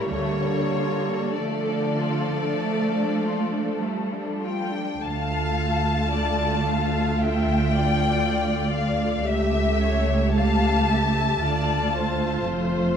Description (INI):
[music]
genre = classical, slow romantic movement for string orchestra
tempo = 47-59 BPM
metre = 4/4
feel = rubato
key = D minor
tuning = A4 = 440 Hz
[part]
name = rich studio violin section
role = melody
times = 0.0-12.4 s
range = C#5 to A5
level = -28 LUFS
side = left 6 dB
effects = none
[part]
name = rich studio violin section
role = second line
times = 0.0-13.0 s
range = A3 to F5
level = -29 LUFS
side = left 4 dB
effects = none
[part]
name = rich studio viola section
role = accompaniment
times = 0.0-13.0 s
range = F3 to G4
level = -26 LUFS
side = right 2 dB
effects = none
[part]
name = rich studio cello section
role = bass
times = 0.0-13.0 s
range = C#2 to A3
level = -29 LUFS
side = right 2 dB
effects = none
[part]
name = rich studio double bass section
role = bass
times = 0.0-13.0 s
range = F1 to D2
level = -26 LUFS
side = right 2 dB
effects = none
[sound]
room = moderate scoring stage reverb, RT60 1.9 s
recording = dark, warm production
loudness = -21 LUFS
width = side -8 dB against mid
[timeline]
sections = 0.0-5.0 A section; 5.0-13.0 B section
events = none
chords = 0.1 Dm; 9.3 A7/C#; 11.4 Dm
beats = | 0.11 1.37 2.63 3.83 | 5.04 6.14 7.21 8.24 | 9.27 10.37 11.42 12.46